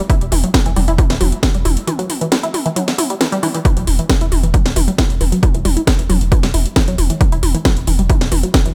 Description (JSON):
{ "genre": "driving peak-time techno", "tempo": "135 BPM", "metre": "4/4", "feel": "straight", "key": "E minor", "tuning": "A4 = 440 Hz", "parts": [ { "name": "tight sequenced synth", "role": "riff", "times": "0.1-8.7 s", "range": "E3 to E4", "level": "-24 LUFS", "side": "equal", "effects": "chorus, phaser, tube saturation, sidechain pumping, digital delay" }, { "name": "electronic kick drum", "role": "drums", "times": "0.1-8.6 s", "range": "none", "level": "-17 LUFS", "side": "equal", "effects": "none" }, { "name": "techno drum kit", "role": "drums", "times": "0.1-8.7 s", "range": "hi-hat, snare drum, toms", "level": "-21 LUFS", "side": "equal", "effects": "sidechain pumping on hats, sidechain pumping on toms" }, { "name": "saturated sub bass", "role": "bass", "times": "0.2-8.7 s", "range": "E1", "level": "-20 LUFS", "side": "equal", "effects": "tube saturation, sidechain pumping, low-pass filter" } ], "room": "light reverb, digital ambience", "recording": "none", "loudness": "-15 LUFS", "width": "mono", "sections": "0.0-8.7 A section", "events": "break 1.9-3.7", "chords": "none" }